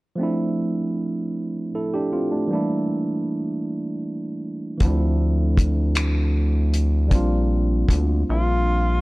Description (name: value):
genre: slow six-eight R&B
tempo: 52 BPM (dotted quarters)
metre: 6/8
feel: straight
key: D minor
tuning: A4 = 440 Hz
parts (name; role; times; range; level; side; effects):
- barky tine electric piano; accompaniment; 0.2-9.0 s; E3 to A4; -24 LUFS; right 1 dB; overdrive
- rubbery square bass; bass; 4.8-9.0 s; Bb1 to D2; -20 LUFS; equal; none
- damped 70s drum kit; drums; 4.8-8.1 s; finger snaps, hi-hat, kick drum; -20 LUFS; equal; none
- breathy tenor saxophone; melody; 8.3-9.0 s; F4; -24 LUFS; left 1 dB; none
room: light reverb, studio reverb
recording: worn, warbling old tape, cassette tape, warbly pitch drift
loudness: -20 LUFS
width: side -21 dB against mid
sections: 0.2-9.0 A section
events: none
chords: 0.2 Dm9; 2.5 Em7b5; 4.8 Dm9; 7.1 Bb69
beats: | 0.19 1.35 | 2.50 3.65 | 4.81 5.96 | 7.12 8.27